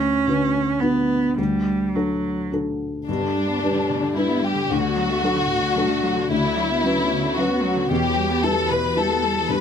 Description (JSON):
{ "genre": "neoclassical piano and strings", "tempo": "112 BPM", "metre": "3/4", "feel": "rubato", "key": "D major", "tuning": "A4 = 440 Hz", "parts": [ { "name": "rich cello", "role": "second line", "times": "0.0-9.6 s", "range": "G2 to C#4", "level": "-24 LUFS", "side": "right 4 dB", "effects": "none" }, { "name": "felt-muted upright piano", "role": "accompaniment", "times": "0.0-9.6 s", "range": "D2 to B4", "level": "-23 LUFS", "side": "left 3 dB", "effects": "none" }, { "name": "rich chamber violin section", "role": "melody", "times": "3.1-9.6 s", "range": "D4 to B4", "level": "-22 LUFS", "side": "left 3 dB", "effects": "none" }, { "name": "glassy FM pad", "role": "sustained chords", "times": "4.0-9.6 s", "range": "A3 to D5", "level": "-30 LUFS", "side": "left 2 dB", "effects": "ensemble chorus, built-in reverb" } ], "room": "light reverb", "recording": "close, detailed microphones", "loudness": "-19 LUFS", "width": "side -8 dB against mid", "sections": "0.0-3.1 A section; 3.1-9.6 A section", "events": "none", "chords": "0.0 Bmadd9/D; 1.4 D; 3.1 G; 4.7 D; 6.3 Bmadd9/D; 7.9 Em" }